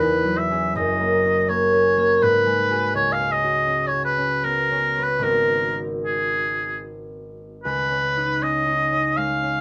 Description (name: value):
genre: classical, impressionist duo for oboe and harp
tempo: 73-83 BPM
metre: 3/4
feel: rubato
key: unclear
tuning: A4 = 440 Hz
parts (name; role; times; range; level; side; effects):
- clear oboe; melody; 0.0-9.6 s; G#4 to E#5; -23 LUFS; equal; none
- concert harp; accompaniment; 0.0-9.6 s; F#1 to G#4; -25 LUFS; equal; none
room: light reverb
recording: none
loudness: -21 LUFS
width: mono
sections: 0.0-9.6 A section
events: none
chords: 0.0 E69; 0.7 F#add9; 2.2 G#m9; 3.0 C#7sus4; 5.2 G#9; 7.6 C#9